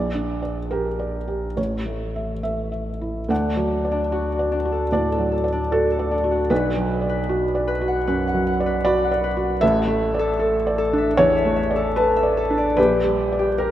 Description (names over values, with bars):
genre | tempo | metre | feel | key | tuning
neoclassical piano and strings | 76 BPM | 4/4 | uneven beats, rubato | D major | A4 = 441 Hz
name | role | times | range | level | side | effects
felt-muted upright piano | accompaniment | 0.0-13.7 s | A1 to F#5 | -21 LUFS | right 1 dB | none
warm sub bass | bass | 0.0-13.7 s | A1 to D2 | -30 LUFS | left 1 dB | none
Celtic harp | arpeggios | 3.3-13.7 s | D4 to B5 | -24 LUFS | left 3 dB | tape echo
room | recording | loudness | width
wet lush hall reverb, RT60 2.8 s | rough home demo mix | -19 LUFS | side -12 dB against mid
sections
0.0-3.3 A section; 3.3-13.7 A section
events
none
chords
0.0 Gm/Bb; 1.6 A; 3.3 D; 6.5 Bm; 9.6 Asus4; 12.8 Gm/Bb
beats
0.71 1.58 2.45 | 3.30 4.13 4.93 5.72 | 6.51 7.29 8.07 8.86 | 9.62 10.39 11.17 11.96 | 12.77 13.59